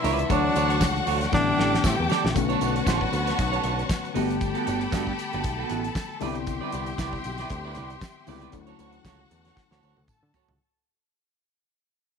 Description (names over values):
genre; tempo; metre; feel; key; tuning
disco; 116 BPM; 4/4; swing 56% on 16ths; unclear; A4 = 439 Hz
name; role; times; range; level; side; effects
breathy tenor saxophone; melody; 0.0-2.1 s; D4; -26 LUFS; left 1 dB; none
rich symphonic violin section; second line; 0.0-10.6 s; E4 to A5; -32 LUFS; left 2 dB; slapback echo
clean electric guitar; accompaniment; 0.0-10.5 s; B3 to D5; -31 LUFS; right 16 dB; none
tine electric piano; accompaniment; 0.0-10.6 s; D3 to C#5; -31 LUFS; left 15 dB; medium stereo tremolo
clear symphonic string section; sustained chords; 0.0-10.6 s; B3 to D6; -34 LUFS; left 5 dB; none
picked electric bass; bass; 0.0-10.6 s; G1 to D3; -30 LUFS; right 1 dB; none
damped 70s drum kit; drums; 0.0-10.6 s; hi-hat, kick drum, snare drum, toms; -29 LUFS; equal; none
tambourine; percussion; 0.0-10.5 s; none; -43 LUFS; right 14 dB; none
room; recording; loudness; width
light reverb, small room reverb; 1960s-style stereo with parts hard left and right; -23 LUFS; side -6 dB against mid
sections
0.0-2.4 A section; 2.4-10.6 B section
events
drum fill 1.3-2.4, 9.6-10.6; fade-out 2.4-10.6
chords
0.3 Dmaj7; 1.3 A7sus4; 2.4 Bm9; 4.2 Gmaj9; 6.2 Cmaj9; 8.5 Dmaj7